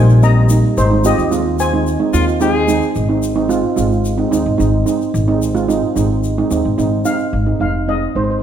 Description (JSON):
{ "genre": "calypso", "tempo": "110 BPM", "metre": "4/4", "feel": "straight", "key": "Ab major", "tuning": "A4 = 440 Hz", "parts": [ { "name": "steel pan", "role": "melody", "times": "0.0-2.4, 7.1-8.4 s", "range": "Eb4 to Bb5", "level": "-20 LUFS", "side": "left 3 dB", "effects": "none" }, { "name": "steel pan", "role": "accompaniment", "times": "0.0-8.3 s", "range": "G3 to F4", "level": "-16 LUFS", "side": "right 4 dB", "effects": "none" }, { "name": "upright bass", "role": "bass", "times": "0.0-8.4 s", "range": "F1 to Eb2", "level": "-16 LUFS", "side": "left 1 dB", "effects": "none" }, { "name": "egg shaker", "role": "percussion", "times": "0.1-7.3 s", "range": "none", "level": "-32 LUFS", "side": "left 6 dB", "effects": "none" }, { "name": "clear trumpet", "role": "second line", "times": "2.1-2.9 s", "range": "F4 to Ab4", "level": "-20 LUFS", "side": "left 5 dB", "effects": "none" } ], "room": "moderate recital hall reverb, RT60 1.8 s", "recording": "none", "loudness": "-13 LUFS", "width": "side -9 dB against mid", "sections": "0.0-3.0 A section; 3.0-7.3 B section; 7.3-8.4 C section", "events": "none", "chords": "0.0 Eb; 0.8 Ab6; 3.0 Ab; 7.3 Ab6" }